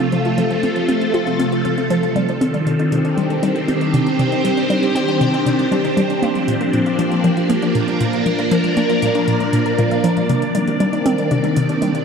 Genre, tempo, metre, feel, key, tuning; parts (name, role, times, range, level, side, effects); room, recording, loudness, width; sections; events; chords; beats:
ambient, sequencer-driven space music; 118 BPM; 4/4; straight; C dorian; A4 = 440 Hz
phased string machine; sustained chords; 0.0-12.0 s; C3 to D5; -17 LUFS; equal; ensemble chorus, phaser, shimmer reverb
soft round pluck; arpeggios; 0.0-11.9 s; A3 to F5; -30 LUFS; left 2 dB
booming analog drum machine; percussion; 0.0-12.0 s; hi-hat, toms; -35 LUFS; left 1 dB; tape echo
hollow square pluck; riff; 0.1-11.9 s; Bb2 to F4; -20 LUFS; equal; chorus, cassette tape, tape echo, shimmer reverb
wet lush hall reverb, RT60 2.9 s; dreamy mix soaked in reverb; -15 LUFS; side -6 dB against mid
0.0-12.0 A section
fade-in on drum 0.0-12.0; filter sweep on synth arpeggio sound 0.0-12.0
0.0 F; 2.2 Cmadd9; 6.2 Bb; 10.3 Cmadd9
| 0.12 0.63 1.14 1.65 | 2.16 2.67 3.17 3.68 | 4.19 4.70 5.21 5.72 | 6.23 6.74 7.24 7.75 | 8.26 8.77 9.28 9.79 | 10.29 10.80 11.31 11.82